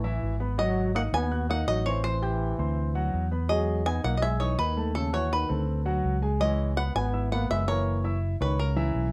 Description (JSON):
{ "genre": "jazz", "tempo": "165 BPM", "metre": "4/4", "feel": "straight", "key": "unclear", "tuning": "A4 = 440 Hz", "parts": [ { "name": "bluegrass banjo", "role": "melody", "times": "0.0-9.1 s", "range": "A4 to G#5", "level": "-33 LUFS", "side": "equal", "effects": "none" }, { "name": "warm trombone", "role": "second line", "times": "0.0-9.1 s", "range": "C#3 to B3", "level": "-36 LUFS", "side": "equal", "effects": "none" }, { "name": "clear upright piano", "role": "accompaniment", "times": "0.0-9.1 s", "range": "E3 to G#6", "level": "-35 LUFS", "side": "equal", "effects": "none" }, { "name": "fingered electric bass", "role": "bass", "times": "0.0-9.1 s", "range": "F#1 to E2", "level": "-30 LUFS", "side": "equal", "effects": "none" } ], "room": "moderate studio reverb, RT60 0.5 s", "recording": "none", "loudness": "-27 LUFS", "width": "mono", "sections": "0.0-9.1 A section", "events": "none", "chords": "0.0 Aadd9; 0.6 G#m7; 2.0 Am7; 2.8 D9; 3.5 Emaj9; 4.9 D#dim; 5.7 D7#11; 6.4 C#m7; 7.9 F#7" }